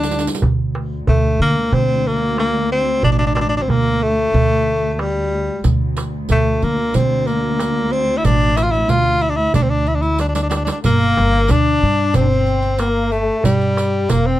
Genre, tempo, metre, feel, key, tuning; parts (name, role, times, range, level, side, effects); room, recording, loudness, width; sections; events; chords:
Turkish makam ensemble; 92 BPM; 4/4; straight; D makam ussak, G makam nihavent from 10.8 s; A4 = 440 Hz
clear tenor saxophone; melody; 0.0-14.4 s; G3 to F4; -18 LUFS; left 1 dB
dark kamancheh; second line; 0.0-0.3, 10.8-14.4 s; G3 to D4; -24 LUFS; left 7 dB
upright bass; bass; 0.0-14.4 s; F1 to D3; -20 LUFS; equal
riq; percussion; 0.0-0.4, 5.6-14.2 s; -28 LUFS; right 6 dB
dark studio cello section; drone; 0.4-10.9 s; D2; -26 LUFS; equal
darbuka; percussion; 0.4-14.2 s; -20 LUFS; right 4 dB
light reverb; close, detailed microphones; -14 LUFS; side -14 dB against mid
0.4-10.8 A section; 10.8-14.4 B section
drum fill 0.0-0.4, 10.2-10.8